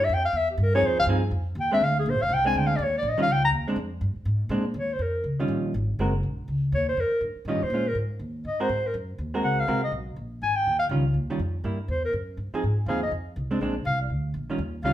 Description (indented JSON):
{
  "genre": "jazz, small-group swing and bop",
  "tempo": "244 BPM",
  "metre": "4/4",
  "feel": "swing 59% on 8ths",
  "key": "Eb mixolydian",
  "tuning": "A4 = 440 Hz",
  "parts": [
    { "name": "mellow clarinet", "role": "melody", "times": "0.0-14.9 s", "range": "G4 to Bb5", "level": "-25 LUFS", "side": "left 1 dB", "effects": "none" },
    { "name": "upright bass", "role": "bass", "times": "0.0-14.9 s", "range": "F1 to Bb2", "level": "-28 LUFS", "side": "equal", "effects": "none" },
    { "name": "hollow-body jazz guitar", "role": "accompaniment", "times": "0.7-14.9 s", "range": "Eb3 to Bb4", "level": "-29 LUFS", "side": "right 2 dB", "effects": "none" }
  ],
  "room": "moderate large studio reverb, RT60 0.8 s",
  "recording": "band playing live in one room",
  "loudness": "-23 LUFS",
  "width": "side -12 dB against mid",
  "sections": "0.0-4.8 A section; 4.8-14.9 B section",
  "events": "clarinet solo 0.0-4.8",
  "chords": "0.0 C (rootless); 0.8 Fm7; 1.8 Bb9 (rootless); 2.8 Eb7(no3); 3.8 Bb9; 4.8 Eb9; 5.7 Ab9; 6.7 Eb9; 7.7 Bbm7; 8.2 Eb; 8.7 Ab9; 10.7 Eb9; 11.6 C7 (rootless); 12.6 Fm7; 13.6 Bb9"
}